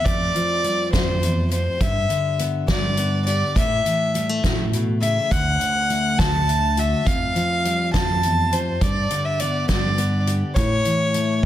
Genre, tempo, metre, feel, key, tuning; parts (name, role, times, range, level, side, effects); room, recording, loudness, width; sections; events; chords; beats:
indie folk with a building arrangement; 68 BPM (dotted quarters); 6/8; straight; A4 = 440 Hz
dark fiddle; melody; 0.0-11.5 s; C5 to A5; -22 LUFS; equal; tape echo
fingerpicked steel-string acoustic guitar; accompaniment; 0.0-11.5 s; D2 to G4; -25 LUFS; left 2 dB
fingered electric bass; bass; 0.1-10.8 s; D2 to A2; -24 LUFS; right 1 dB
soft-mallet drum kit; drums; 0.1-11.5 s; crash cymbal, hi-hat, kick drum, snare drum; -24 LUFS; equal
light reverb, studio reverb; dense, heavily limited modern master; -18 LUFS; side -12 dB against mid
0.0-11.5 A section
0.0 Fsus2; 1.8 G; 3.6 A; 5.3 D; 7.1 Fadd9; 8.8 G; 10.6 A
| 0.05 0.93 | 1.80 2.68 | 3.56 4.43 | 5.31 6.19 | 7.06 7.94 | 8.81 9.69 | 10.56 11.43